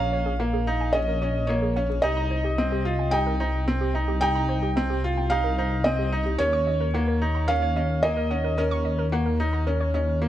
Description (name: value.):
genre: piano and strings electronica.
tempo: 110 BPM.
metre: 4/4.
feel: straight.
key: unclear.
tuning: A4 = 442 Hz.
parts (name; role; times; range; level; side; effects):
felt-muted upright piano; melody; 0.0-10.3 s; Bb4 to G5; -27 LUFS; right 1 dB; tape echo.
warbly dusty pluck; arpeggios; 0.0-10.0 s; G4 to Db6; -33 LUFS; right 3 dB; chorus, tape echo.
bright upright piano; riff; 0.0-10.3 s; Bb3 to F4; -27 LUFS; equal; tape echo.
dark detuned saw bass; bass; 0.0-10.3 s; Bb1 to Eb2; -26 LUFS; left 1 dB; none.
room: light reverb, small room ambience.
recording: none.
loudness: -22 LUFS.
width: side -12 dB against mid.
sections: 0.0-10.3 A section.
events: none.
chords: 0.0 Bbm7; 2.0 Cm; 6.4 Eb7(no3).